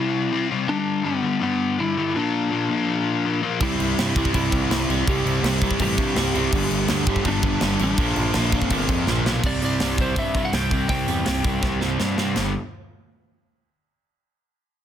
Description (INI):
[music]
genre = punk rock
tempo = 164 BPM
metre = 4/4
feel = straight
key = unclear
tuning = A4 = 440 Hz
[part]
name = lightly driven lead guitar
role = melody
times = 0.0-12.0 s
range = B3 to G5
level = -27 LUFS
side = equal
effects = none
[part]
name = crunchy overdriven guitar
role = riff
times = 0.0-12.5 s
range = G2 to C4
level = -25 LUFS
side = left 6 dB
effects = none
[part]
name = overdriven electric guitar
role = riff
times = 3.6-12.5 s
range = G2 to C4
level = -27 LUFS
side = right 13 dB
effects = none
[part]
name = sludgy distorted guitar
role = riff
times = 3.6-9.4 s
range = G2 to E4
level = -29 LUFS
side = right 2 dB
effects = overdrive
[part]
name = fuzz picked electric bass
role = bass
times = 3.6-12.5 s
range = G1 to G2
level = -26 LUFS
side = equal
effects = overdrive
[part]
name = tight metal drum kit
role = drums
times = 3.6-12.5 s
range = china cymbal, crash cymbal, hi-hat, kick drum, snare drum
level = -25 LUFS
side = equal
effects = none
[sound]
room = light reverb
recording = dense, heavily limited modern master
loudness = -20 LUFS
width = side -10 dB against mid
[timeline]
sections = 0.0-9.4 A section; 9.4-12.4 B section; 12.4-13.9 C section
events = drum fill 9.1-9.4, 11.6-12.4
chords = 0.0 C; 0.7 G; 2.2 Bb; 3.6 C; 6.5 G; 8.0 Bb; 9.4 C5; 12.4 G5